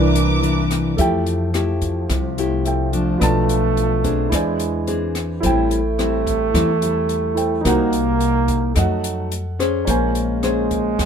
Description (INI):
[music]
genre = bossa nova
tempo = 108 BPM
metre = 4/4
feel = straight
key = F major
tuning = A4 = 442 Hz
[part]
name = nylon-string guitar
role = accompaniment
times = 0.0-11.1 s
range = A2 to C5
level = -21 LUFS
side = left 4 dB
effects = none
[part]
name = warm baby grand piano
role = accompaniment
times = 0.0-11.1 s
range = E3 to A5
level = -24 LUFS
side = right 3 dB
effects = none
[part]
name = warm symphonic violin section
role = sustained chords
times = 0.0-1.0 s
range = Bb4 to D6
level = -25 LUFS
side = right 2 dB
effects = none
[part]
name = upright bass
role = bass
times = 0.0-11.1 s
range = A1 to F2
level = -23 LUFS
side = equal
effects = none
[part]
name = open jazz drum kit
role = drums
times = 0.2-11.1 s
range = hi-hat, kick drum, rim click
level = -25 LUFS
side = left 1 dB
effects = none
[part]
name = breathy trombone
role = second line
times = 1.0-11.1 s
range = F3 to Bb3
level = -23 LUFS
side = right 6 dB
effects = none
[sound]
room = little or no reverb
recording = minimal, uncompressed stereo recording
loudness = -17 LUFS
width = side -7 dB against mid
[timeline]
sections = 1.0-11.1 A section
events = none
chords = 0.0 C9; 1.0 Fmaj9; 3.2 Bm7b5; 4.3 Eaug7; 5.4 Am7; 7.7 Cm7b5; 8.8 F7b9; 9.9 Bbm9